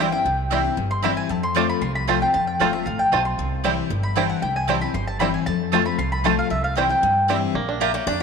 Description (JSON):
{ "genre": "bluegrass", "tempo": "230 BPM", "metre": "4/4", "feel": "straight", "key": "C major", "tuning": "A4 = 442 Hz", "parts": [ { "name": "bluegrass banjo", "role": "melody", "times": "0.0-8.2 s", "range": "G3 to G4", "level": "-28 LUFS", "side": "right 4 dB", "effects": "none" }, { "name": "mandolin", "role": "melody", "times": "0.0-7.3 s", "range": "E5 to D6", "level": "-24 LUFS", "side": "left 1 dB", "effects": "none" }, { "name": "picked steel-string acoustic guitar", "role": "accompaniment", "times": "0.0-8.2 s", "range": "F2 to E5", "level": "-25 LUFS", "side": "left 9 dB", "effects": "none" }, { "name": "mandolin", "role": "stabs", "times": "0.0-7.9 s", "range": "Bb3 to Bb5", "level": "-27 LUFS", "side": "right 12 dB", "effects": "none" }, { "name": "upright bass", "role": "bass", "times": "0.0-8.2 s", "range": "G1 to G2", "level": "-28 LUFS", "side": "right 2 dB", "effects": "none" } ], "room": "wet echo chamber reverb, RT60 2.3 s", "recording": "1960s-style stereo with parts hard left and right", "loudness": "-19 LUFS", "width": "side -5 dB against mid", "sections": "0.0-7.5 A section", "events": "mandolin solo 0.0-7.5", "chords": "0.0 C; 1.3 F; 3.4 C; 5.5 F; 6.5 C; 7.5 Bb" }